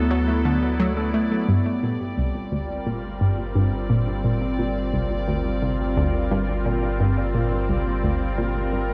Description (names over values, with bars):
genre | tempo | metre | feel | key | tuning
ambient, sequencer-driven space music | 87 BPM | 4/4 | straight | unclear | A4 = 440 Hz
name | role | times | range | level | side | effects
evolving wavetable pad | sustained chords | 0.0-8.9 s | F#3 to D5 | -28 LUFS | equal | chorus, built-in reverb, shimmer reverb
mellow electric guitar | arpeggios | 0.0-1.5 s | A3 | -32 LUFS | equal | none
round analog bass | bass | 0.0-8.9 s | G1 to D2 | -30 LUFS | equal | tube saturation
analog pluck | riff | 0.1-8.9 s | C2 to A3 | -26 LUFS | equal | chorus, tape echo
room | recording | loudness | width
moderate plate reverb, RT60 2.7 s | dark, warm production | -23 LUFS | mono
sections
0.0-1.5 A section; 1.5-8.9 B section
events
filter sweep on synth arpeggio sound 1.5-8.9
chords
0.0 D; 1.5 Gm